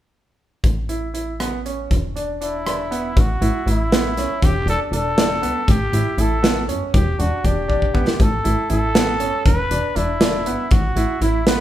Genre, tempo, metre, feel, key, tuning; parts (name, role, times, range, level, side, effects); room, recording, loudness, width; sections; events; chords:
progressive instrumental, band music in an uneven meter; 238 BPM (eighths); 5/8; straight; A4 = 440 Hz
plucky analog bass; bass; 0.6-11.6 s; E1 to F#2; -22 LUFS; equal
modern studio drum kit; drums; 0.6-11.6 s; hi-hat, kick drum, rim click, snare drum; -19 LUFS; equal
bright baby grand piano; arpeggios; 0.9-11.6 s; B3 to E4; -25 LUFS; right 2 dB
growling trumpet; melody; 2.4-11.6 s; E4 to B4; -24 LUFS; equal
moderate large studio reverb, RT60 1.0 s; band playing live in one room; -17 LUFS; side -12 dB against mid
0.6-3.2 A section; 3.2-11.6 B section
drum fill 7.7-8.2
0.6 Aadd9; 1.9 E5; 3.2 Aadd9; 4.4 E5; 5.7 Aadd9; 6.9 Em7; 8.2 Aadd9; 9.5 Em7; 10.7 Asus2